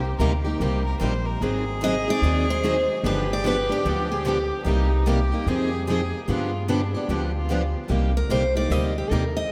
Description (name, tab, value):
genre	acoustic string swing (jazz manouche)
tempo	148 BPM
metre	4/4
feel	swing 62% on 8ths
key	C minor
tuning	A4 = 440 Hz
part	warm violin	second line	0.0-7.7 s	D4 to C5	-32 LUFS	equal	none
part	upright bass	bass	0.0-9.5 s	G1 to G2	-28 LUFS	equal	none
part	picked steel-string acoustic guitar	accompaniment	0.2-9.2 s	C3 to Ab4	-29 LUFS	equal	none
part	picked steel-string acoustic guitar	accompaniment	0.2-9.2 s	C3 to Ab4	-34 LUFS	equal	none
part	picked steel-string acoustic guitar	melody	1.8-4.9, 8.2-9.5 s	G4 to Eb5	-31 LUFS	equal	none
room	wet cathedral reverb, RT60 6.5 s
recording	in a vast, echoing space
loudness	-23 LUFS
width	mono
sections	0.0-7.9 A section; 7.9-9.5 B section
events	steel-string acoustic guitar solo 7.9-9.5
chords	0.0 Cm7; 1.4 Ab7; 3.0 G7; 4.7 Cm7; 5.5 Fm7; 6.3 G7; 7.9 Cm7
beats	0.20 0.60 1.01 | 1.42 1.82 2.23 2.63 | 3.04 3.44 3.85 4.26 | 4.66 5.07 5.47 5.88 | 6.28 6.69 7.09 7.50 | 7.90 8.31 8.71 9.12